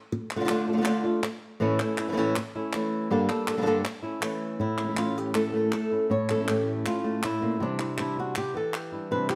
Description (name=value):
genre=flamenco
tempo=160 BPM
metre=4/4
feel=straight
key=A phrygian dominant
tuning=A4 = 439 Hz
part: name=flamenco guitar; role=melody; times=0.1-9.4 s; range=G2 to C#5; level=-29 LUFS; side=equal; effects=none
part: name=palmas hand claps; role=percussion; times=0.3-9.4 s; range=none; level=-37 LUFS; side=equal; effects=none
part: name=flamenco guitar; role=stabs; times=4.6-9.4 s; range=A2 to E4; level=-34 LUFS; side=equal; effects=tape echo
room=moderate stone room reverb, RT60 1.3 s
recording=none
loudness=-28 LUFS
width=mono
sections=0.0-4.6 A section; 4.6-9.4 B section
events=none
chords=0.1 Dm; 1.6 A; 3.1 Gmadd9; 3.9 A; 7.6 Cadd9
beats=| 0.11 0.49 0.86 1.23 | 1.61 1.98 2.35 2.73 | 3.10 3.48 3.85 4.23 | 4.60 4.97 5.35 5.73 | 6.10 6.48 6.85 7.23 | 7.60 7.98 8.36 8.73 | 9.11